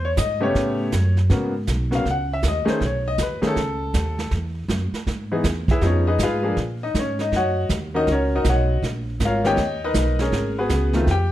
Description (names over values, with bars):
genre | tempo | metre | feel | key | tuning
jazz piano trio | 160 BPM | 4/4 | swing 64% on 8ths | G# minor | A4 = 441 Hz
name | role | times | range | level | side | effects
clear baby grand piano | melody | 0.0-11.3 s | C#3 to G5 | -22 LUFS | left 2 dB | none
upright bass | bass | 0.0-11.3 s | G#1 to A#2 | -23 LUFS | equal | none
jazz brush drum kit | drums | 0.2-11.3 s | brushed snare drum, hi-hat, kick drum, snare drum | -27 LUFS | right 2 dB | none
room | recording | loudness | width
light reverb | none | -19 LUFS | side -13 dB against mid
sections
0.0-1.3 A section; 1.3-11.3 B section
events
grand piano solo 1.3-11.3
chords
0.0 E6; 0.6 A9; 1.3 G#m11; 2.8 B9; 4.3 E; 5.8 Fm7b5; 6.6 G#sus24; 7.3 D#m7; 8.8 A#m7; 9.6 D#7b13; 10.3 G#m11